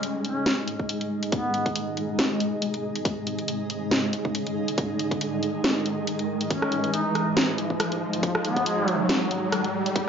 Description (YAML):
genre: deep dubstep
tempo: 139 BPM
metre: 4/4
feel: swing 55% on 16ths, half-time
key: unclear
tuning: A4 = 440 Hz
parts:
  - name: warm duduk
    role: melody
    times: 0.0-1.7, 6.5-9.0 s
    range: G#3 to D#4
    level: -30 LUFS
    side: equal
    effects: dub echo
  - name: granular cloud pad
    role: sustained chords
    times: 0.0-10.1 s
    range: G#3 to D#5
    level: -29 LUFS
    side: right 1 dB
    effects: built-in reverb, vintage 12-bit sampler grit
  - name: garage drum kit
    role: drums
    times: 0.0-10.1 s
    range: hi-hat, rim click, snare drum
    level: -26 LUFS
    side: equal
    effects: studio reverb
  - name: riser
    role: sound effects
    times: 0.0-10.1 s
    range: none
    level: -31 LUFS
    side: right 1 dB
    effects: none
  - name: flickering grainy texture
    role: texture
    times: 0.0-10.1 s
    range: G#3 to G#4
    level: -34 LUFS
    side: left 1 dB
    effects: built-in reverb
  - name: electronic kick drum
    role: drums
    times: 0.8-10.1 s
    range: none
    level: -28 LUFS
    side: equal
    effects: high-pass filter on kick, studio reverb
room: wet digital room reverb, RT60 1.1 s, digital ambience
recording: dark, warm production, nothing above 7.5 kHz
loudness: -23 LUFS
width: side -7 dB against mid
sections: 0.0-10.1 A section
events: build-up 0.0-10.1; riser 0.0-10.1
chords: 0.0 G#5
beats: 0.03 0.46 0.89 | 1.32 1.76 2.19 2.62 | 3.05 3.48 3.92 4.35 | 4.78 5.21 5.64 6.07 | 6.50 6.94 7.37 7.80 | 8.23 8.66 9.10 9.53 | 9.96